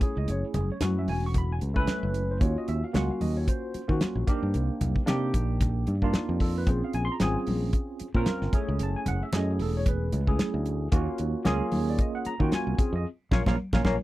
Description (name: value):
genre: electric jazz fusion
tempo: 113 BPM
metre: 4/4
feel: swing 56% on 16ths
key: unclear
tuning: A4 = 440 Hz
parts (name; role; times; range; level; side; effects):
- tine electric piano; accompaniment; 0.0-14.0 s; A3 to Db6; -30 LUFS; right 1 dB; medium stereo tremolo, lush chorus
- fretless electric bass; bass; 0.0-14.0 s; Fb1 to Eb3; -28 LUFS; equal; none
- damped 70s drum kit; drums; 0.0-14.0 s; hi-hat, kick drum, snare drum; -27 LUFS; equal; none
- congas; percussion; 0.3-14.0 s; none; -33 LUFS; left 1 dB; none
room: little or no reverb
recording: dry, close 1970s-style studio recording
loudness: -25 LUFS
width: side -16 dB against mid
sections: 0.0-14.0 A section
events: band accent 13.1-14.0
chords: 0.0 Gbm9; 2.4 Ebm9; 4.3 Cm9; 6.7 Bbm9; 8.5 Gbm9; 10.9 Ebm9; 12.8 Bbm9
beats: | 0.28 0.82 1.35 1.88 | 2.41 2.95 3.48 4.01 | 4.54 5.08 5.61 6.14 | 6.67 7.21 7.74 8.27 | 8.80 9.33 9.87 10.40 | 10.93 11.46 11.99 12.53 | 13.06 13.59